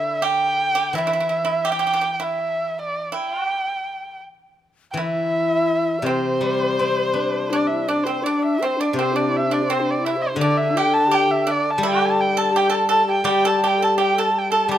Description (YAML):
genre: chinese traditional, Chinese chamber ensemble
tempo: 83 BPM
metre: 4/4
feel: straight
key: G zhi mode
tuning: A4 = 440 Hz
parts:
  - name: dark erhu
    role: melody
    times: 0.0-14.8 s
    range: C5 to A5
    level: -21 LUFS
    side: right 1 dB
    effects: none
  - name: pipa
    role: second line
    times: 0.0-14.8 s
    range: C4 to A4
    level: -24 LUFS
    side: right 4 dB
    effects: none
  - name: steel-string zither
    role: accompaniment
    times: 0.0-14.8 s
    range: C3 to D4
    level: -25 LUFS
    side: left 2 dB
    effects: none
  - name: breathy xiao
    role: second line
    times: 5.0-14.8 s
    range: D4 to D5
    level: -25 LUFS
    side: left 5 dB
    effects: none
room: light reverb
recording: close, detailed microphones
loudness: -18 LUFS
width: side -11 dB against mid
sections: 0.0-4.6 A section; 4.6-14.8 B section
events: none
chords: none